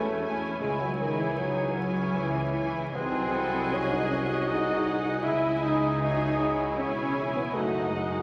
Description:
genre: classical, slow romantic movement for symphony orchestra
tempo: 78 BPM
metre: 3/4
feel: rubato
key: C# minor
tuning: A4 = 439 Hz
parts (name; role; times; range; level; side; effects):
- muted chamber violin section; melody; 0.0-8.2 s; D#5 to G#5; -40 LUFS; equal; none
- clear oboe; second line; 0.0-8.2 s; D#5 to G#5; -42 LUFS; equal; none
- mellow hollow small flute group; second line; 0.0-8.2 s; D#5 to E6; -41 LUFS; equal; none
- muted chamber violin section; second line; 0.0-8.2 s; D#4 to D#5; -38 LUFS; equal; none
- warm clarinet; second line; 0.0-8.2 s; F#4 to C#5; -45 LUFS; equal; none
- mellow bassoon; accompaniment; 0.0-8.2 s; D#3 to E4; -34 LUFS; equal; none
- muted studio viola section; accompaniment; 0.0-8.2 s; C#4 to G#4; -41 LUFS; equal; none
- mellow French horn section; sustained chords; 0.0-8.2 s; D#4 to C#5; -39 LUFS; equal; none
- concert harp; arpeggios; 0.0-8.2 s; F#2 to D#6; -42 LUFS; equal; none
- muted chamber double bass section; bass; 0.0-8.2 s; E1 to E2; -39 LUFS; equal; none
- muted studio cello section; bass; 0.0-8.2 s; D#3 to E4; -35 LUFS; equal; none
- warm tuba; bass; 0.0-8.2 s; E1 to C#2; -39 LUFS; equal; none
room: wet concert hall reverb, RT60 2.4 s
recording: vinyl crackle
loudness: -28 LUFS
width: mono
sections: 0.0-8.2 A section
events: none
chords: 0.0 C#m/E; 0.6 C#m; 3.0 G#7/B#; 5.2 C#m; 7.5 D#dim/F#

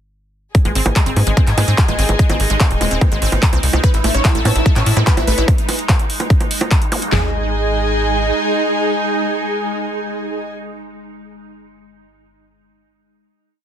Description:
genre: psychedelic trance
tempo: 146 BPM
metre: 4/4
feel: straight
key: unclear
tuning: A4 = 440 Hz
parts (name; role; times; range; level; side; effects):
- evolving wavetable pad; sustained chords; 1.3-10.4 s; G#3 to D#4; -24 LUFS; right 2 dB; ensemble chorus, built-in reverb, sidechain pumping
- big-room dance drum kit; drums; 0.5-7.2 s; handclaps, kick drum, snare drum, toms; -15 LUFS; equal; none
- big-room dance drum kit; drums; 0.5-7.1 s; bongos, handclaps, hi-hat; -20 LUFS; right 1 dB; none
- warm studio string section; texture; 0.5-10.5 s; G#4 to E6; -24 LUFS; left 2 dB; sidechain pumping
- wide unison pluck; riff; 0.7-7.3 s; G#3 to C#4; -25 LUFS; right 1 dB; auto-pan, sidechain pumping, tape echo
- tight sequencer bass; bass; 0.7-8.3 s; D#1 to A2; -17 LUFS; equal; tube saturation
- formant-sweep wobble bass; second line; 1.2-5.4 s; G#3 to B#3; -34 LUFS; right 4 dB; none
- supersaw stab; melody; 3.8-10.4 s; E4 to C#5; -22 LUFS; equal; phaser, sidechain pumping, tape echo
- zap; sound effects; 6.9-7.0 s; none; -27 LUFS; equal; none
room: little or no reverb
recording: dense, heavily limited modern master, faint mains hum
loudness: -13 LUFS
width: side -10 dB against mid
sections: 0.5-7.1 drop; 7.1-10.4 final chord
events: drop 0.5-7.1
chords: 0.5 G#5; 3.8 A5; 7.1 G#5

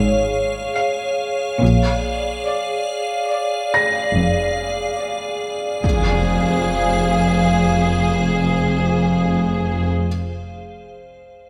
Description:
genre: cinematic, suspense film score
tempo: 71 BPM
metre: 5/4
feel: straight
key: unclear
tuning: A4 = 440 Hz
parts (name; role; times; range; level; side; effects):
- icy glass pad; sustained chords; 0.0-9.9 s; Ab4 to F5; -24 LUFS; equal; chorus, built-in reverb
- rich symphonic cello section; bass; 0.0-9.9 s; F2 to Bb2; -23 LUFS; equal; none
- warm symphonic double bass section; bass; 0.0-9.9 s; F1 to Bb1; -24 LUFS; equal; none
- felt-muted upright piano; texture; 0.0-5.9 s; E6 to Bb6; -26 LUFS; equal; none
- rich symphonic violin section; melody; 0.8-9.9 s; Ab4 to F5; -27 LUFS; equal; none
- impact; sound effects; 5.8-9.9 s; none; -28 LUFS; equal; none
room: moderate scoring stage reverb, RT60 1.9 s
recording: none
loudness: -19 LUFS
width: mono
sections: 0.0-5.8 A section; 5.8-10.1 B section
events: impact 5.8-10.1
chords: 0.0 Db; 1.6 Bb7; 5.8 Fm

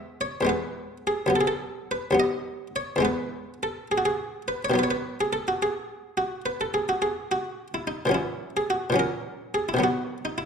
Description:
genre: classical, baroque-style suite movement for harpsichord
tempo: 71 BPM (dotted quarters)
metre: 12/8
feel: rubato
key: unclear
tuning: A4 = 441 Hz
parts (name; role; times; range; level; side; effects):
- buff-stop harpsichord; solo; 0.0-10.5 s; D#2 to E5; -24 LUFS; equal; none
room: moderate recital hall reverb, RT60 1.4 s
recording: none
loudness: -24 LUFS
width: side -6 dB against mid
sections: 0.0-10.5 A section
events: none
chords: 0.0 E; 1.3 B/D#; 3.0 E; 4.8 B; 8.1 F#7/A#; 9.8 B

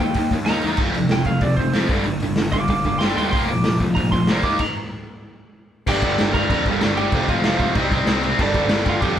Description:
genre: punk rock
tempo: 190 BPM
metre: 4/4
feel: straight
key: G minor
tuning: A4 = 441 Hz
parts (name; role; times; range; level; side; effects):
- lightly driven lead guitar; melody; 0.0-9.2 s; D4 to D6; -25 LUFS; right 2 dB; none
- distorted electric guitar; riff; 0.0-9.2 s; F2 to Eb4; -21 LUFS; equal; overdrive
- fuzz picked electric bass; bass; 0.0-9.1 s; F1 to F2; -26 LUFS; equal; overdrive
- raw garage drum kit; drums; 0.1-9.1 s; crash cymbal, hi-hat, kick drum, snare drum; -22 LUFS; equal; none
room: light reverb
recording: band playing live in one room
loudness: -17 LUFS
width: side -10 dB against mid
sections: 0.0-5.9 A section; 5.9-9.2 B section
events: lead electric guitar solo 0.0-5.9; stop 4.6-5.9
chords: 0.0 Eb; 0.8 F5; 1.9 G5; 3.3 Bb/F; 4.4 Eb5; 5.9 Gm; 7.1 F5; 7.8 Cm; 8.4 G5

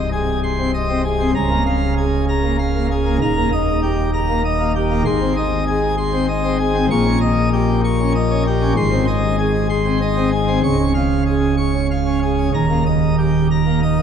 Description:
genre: classical, organ toccata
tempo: 97 BPM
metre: 3/4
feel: straight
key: Ab major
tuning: A4 = 440 Hz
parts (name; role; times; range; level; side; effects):
- pipe organ, plenum; solo; 0.0-14.0 s; C1 to Db6; -15 LUFS; equal; none
room: wet church reverb, RT60 3.7 s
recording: dark, warm production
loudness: -15 LUFS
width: side -8 dB against mid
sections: 0.0-14.0 A section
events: none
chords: 0.0 Ab/C; 1.3 Bbm7/Db; 3.2 Eb; 5.1 Ab; 6.9 Eb7/Bb; 8.8 Ab; 10.6 Db; 12.5 Eb

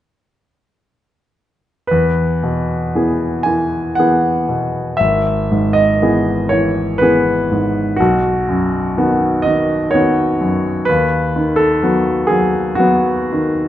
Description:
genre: classical, romantic nocturne for solo piano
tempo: 53-64 BPM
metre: 3/4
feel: rubato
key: E major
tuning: A4 = 440 Hz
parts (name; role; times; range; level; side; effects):
- clear concert grand piano; solo; 1.9-13.7 s; G#1 to G#5; -13 LUFS; equal; none
room: wet recital hall reverb, RT60 1.4 s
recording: nothing above 10.4 kHz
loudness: -13 LUFS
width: side -12 dB against mid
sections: 1.9-13.7 A section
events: none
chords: 1.9 E; 5.0 E/G#; 8.0 B; 10.9 B/D#

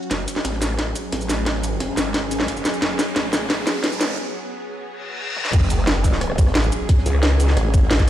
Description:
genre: dark technical drum and bass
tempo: 177 BPM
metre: 4/4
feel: straight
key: F# minor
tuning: A4 = 437 Hz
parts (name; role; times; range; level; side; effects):
- swarming drone; sustained chords; 0.0-8.1 s; F#3 to G#4; -28 LUFS; right 1 dB; built-in reverb, sidechain pumping
- drum and bass drum kit; drums; 0.0-8.1 s; cabasa, crash cymbal, hi-hat, rim click, snare drum, toms; -22 LUFS; equal; low-pass filter on perc, low-pass filter on snare, low-pass filter on hats, low-pass filter on toms, low-pass filter on cymbals, low-pass filter on room
- swell, riser, reverse cymbal and sub drop; sound effects; 0.0-6.9 s; none; -30 LUFS; equal; none
- growl bass; bass; 0.1-7.6 s; F#1 to C#2; -22 LUFS; equal; chorus, sidechain pumping
- crunchy breakbeat drum kit; drums; 0.1-8.1 s; hi-hat, snare drum; -35 LUFS; right 1 dB; none
- electronic kick drum; drums; 0.1-8.1 s; none; -18 LUFS; equal; high-pass filter on kick, high-pass filter on room
- formant-sweep wobble bass; bass; 6.4-8.1 s; A1; -20 LUFS; equal; chorus
room: light reverb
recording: played on a big sound system in a bare room, stone room reverb, high-pass filter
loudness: -18 LUFS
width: side -12 dB against mid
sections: 0.1-5.5 A section; 5.5-8.1 B section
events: build-up 0.1-5.5; drum fill 0.1-4.2, 5.4; riser 0.1-4.2; filter sweep 0.1-5.5; break 4.2-5.5; reverse cymbal 5.0-5.5; drop 5.5-8.1; impact 5.5-6.9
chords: 0.1 F#5

